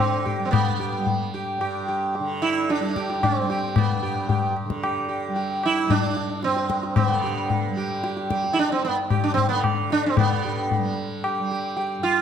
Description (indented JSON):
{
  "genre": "indian classical, Hindustani",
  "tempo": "112 BPM",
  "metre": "3/4",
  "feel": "straight",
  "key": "unclear",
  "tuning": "A4 = 435 Hz",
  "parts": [
    { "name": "sitar", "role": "melody", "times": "0.0-12.2 s", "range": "B3 to G4", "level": "-24 LUFS", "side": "right 2 dB", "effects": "none" },
    { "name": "tanpura", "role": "drone", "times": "0.0-12.2 s", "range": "G2 to G3", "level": "-31 LUFS", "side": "right 3 dB", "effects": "none" },
    { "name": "tabla", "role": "percussion", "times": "0.3-12.2 s", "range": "none", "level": "-25 LUFS", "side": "left 5 dB", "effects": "none" }
  ],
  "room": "moderate scoring stage reverb, RT60 1.7 s",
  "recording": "none",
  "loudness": "-21 LUFS",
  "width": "side -8 dB against mid",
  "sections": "0.0-10.2 A section; 10.2-12.2 B section",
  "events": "none",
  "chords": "none",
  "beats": "| 0.53 1.07 1.61 | 2.14 2.68 3.22 | 3.76 4.29 4.83 | 5.36 5.90 6.43 | 6.97 7.50 8.04 | 8.57 9.11 9.64 | 10.17 10.70 11.23 | 11.76"
}